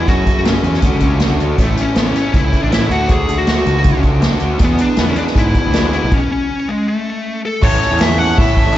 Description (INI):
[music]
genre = indie rock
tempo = 159 BPM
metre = 4/4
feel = straight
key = A major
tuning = A4 = 441 Hz
[part]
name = fuzz lead guitar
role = melody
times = 0.0-8.8 s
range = G#3 to F#5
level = -18 LUFS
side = left 2 dB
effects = distortion, slapback echo, analog delay
[part]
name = electric guitar through a small old amp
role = riff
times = 0.0-8.8 s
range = A2 to A4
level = -23 LUFS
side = right 10 dB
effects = lush chorus, slapback echo
[part]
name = fuzz guitar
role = riff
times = 0.0-8.8 s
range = E2 to G#4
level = -24 LUFS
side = left 8 dB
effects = distortion, slapback echo
[part]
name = fuzz picked electric bass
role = bass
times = 0.0-8.7 s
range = A1 to A2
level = -17 LUFS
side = equal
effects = overdrive
[part]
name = unplugged drum kit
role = drums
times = 0.1-8.8 s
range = crash cymbal, hi-hat, kick drum, snare drum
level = -16 LUFS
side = equal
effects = none
[part]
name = glockenspiel with rubber mallets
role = second line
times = 7.6-8.8 s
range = A5 to C#6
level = -28 LUFS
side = right 2 dB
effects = slapback echo
[part]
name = group handclap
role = percussion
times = 8.0-8.8 s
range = none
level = -30 LUFS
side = right 3 dB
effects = none
[sound]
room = little or no reverb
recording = live gig heard through the venue's PA, recital hall reverb, nothing above 7.9 kHz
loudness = -12 LUFS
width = side -13 dB against mid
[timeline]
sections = 0.0-7.6 A section; 7.6-8.8 B section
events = stop 6.1-7.6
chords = 0.1 F#madd9; 0.8 Dmaj7; 1.6 A; 2.9 Dmaj7; 4.6 E7; 6.1 N.C.; 7.6 A